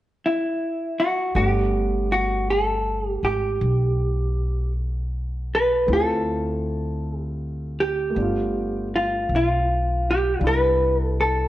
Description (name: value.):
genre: jazz ballad.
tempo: 53 BPM.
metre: 4/4.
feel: swing 66% on 8ths.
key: G major.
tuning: A4 = 441 Hz.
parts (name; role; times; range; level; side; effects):
vintage hollow-body jazz guitar; melody; 0.3-11.5 s; E4 to B4; -22 LUFS; equal; none.
upright bass; bass; 1.3-11.5 s; G1 to D2; -25 LUFS; equal; none.
warm grand piano; accompaniment; 1.4-11.5 s; G3 to F#5; -30 LUFS; left 1 dB; none.
room: light reverb.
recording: worn, warbling old tape, cassette tape, warbly pitch drift, nothing above 10.6 kHz.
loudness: -20 LUFS.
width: side -14 dB against mid.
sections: 0.0-1.4 A section; 1.4-11.5 B section.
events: none.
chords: 0.0 N.C.; 1.4 Gmaj9; 5.9 Dm7; 8.2 G9; 10.4 Cmaj7.